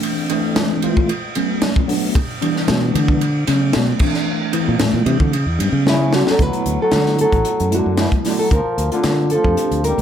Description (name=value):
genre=electric jazz fusion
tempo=113 BPM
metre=4/4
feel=straight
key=D major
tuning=A4 = 440 Hz
part: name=mellow tine electric piano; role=accompaniment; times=0.0-10.0 s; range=E3 to G4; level=-21 LUFS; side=equal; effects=medium stereo tremolo, ensemble chorus
part: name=crisp fusion drum kit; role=drums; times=0.0-10.0 s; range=crash cymbal, hi-hat, kick drum, ride cymbal, snare drum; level=-21 LUFS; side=equal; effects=none
part: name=congas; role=percussion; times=0.0-10.0 s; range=none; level=-26 LUFS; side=left 3 dB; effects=none
part: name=fingered electric bass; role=bass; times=2.7-10.0 s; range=A1 to D3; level=-19 LUFS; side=equal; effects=none
part: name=nylon-string guitar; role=melody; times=5.9-10.0 s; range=E4 to B4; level=-19 LUFS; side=equal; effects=none
part: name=bright trombone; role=second line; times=5.9-10.0 s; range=B2 to G3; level=-25 LUFS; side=left 1 dB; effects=none
room=light reverb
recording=none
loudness=-15 LUFS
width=side -9 dB against mid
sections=0.0-6.4 A section; 6.4-10.0 B section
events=fingered electric bass solo 0.0-6.4; drum fill 5.9-6.4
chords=0.0 Dm9/E; 1.1 F#madd11; 2.2 G6; 3.2 Bm9; 4.0 Bbmaj9#11; 5.3 Em69; 6.4 D6; 8.5 Dm11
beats=| 0.05 0.58 1.11 1.63 | 2.16 2.69 3.22 3.75 | 4.28 4.80 5.33 5.86 | 6.39 6.92 7.45 7.99 | 8.52 9.05 9.58